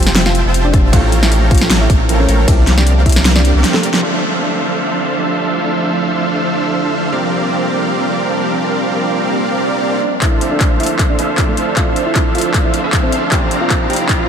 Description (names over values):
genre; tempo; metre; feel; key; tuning
future bass; 155 BPM; 4/4; swing 54% on 16ths, half-time; D minor; A4 = 440 Hz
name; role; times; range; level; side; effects
thumb-piano-like synth pluck; melody; 0.0-4.0, 10.2-14.3 s; A3 to G5; -22 LUFS; equal; chorus, cassette tape, sidechain pumping, tape echo
tine electric piano; accompaniment; 0.0-14.3 s; F3 to A5; -22 LUFS; right 4 dB; medium stereo tremolo, sidechain pumping, tape echo
dense compressed supersaw; riff; 0.0-14.3 s; A3 to Bb5; -18 LUFS; right 1 dB; sidechain pumping, low-pass filter, tape echo
saturated sub bass; bass; 0.0-3.6, 10.2-14.3 s; F1 to D2; -16 LUFS; equal; sidechain pumping, high-pass filter
dubstep drum kit; drums; 0.0-4.1, 10.2-14.2 s; crash cymbal, handclaps, hi-hat, ride cymbal, snare drum; -18 LUFS; equal; low-pass filter on hats, low-pass filter on snare, low-pass filter on cymbals
electronic kick drum; drums; 0.7-3.1, 10.2-14.2 s; none; -14 LUFS; equal; none
ethereal airy pad; sustained chords; 4.9-14.3 s; F3 to E6; -24 LUFS; right 1 dB; ensemble chorus, built-in reverb, sidechain pumping
swell and riser; sound effects; 9.6-14.3 s; none; -25 LUFS; right 2 dB; none
room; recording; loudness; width
moderate huge ambient reverb, RT60 9.3 s; dreamy mix soaked in reverb; -12 LUFS; side -8 dB against mid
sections
0.0-4.0 A section; 4.0-10.2 B section; 10.2-14.3 C section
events
drop 0.0-4.0; break 3.6-4.0; drum fill 3.6-4.0, 10.2-14.3; band accent 3.9; filter sweep on drum 4.0-10.2; swell 9.6-10.2; build-up 10.2-14.3; filter sweep on synth pluck 10.2-14.3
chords
0.0 Fmaj9; 0.9 A7b9b13; 2.5 C9sus4; 4.0 Dm9; 7.1 C7sus4; 10.0 Dm9; 13.3 C7sus4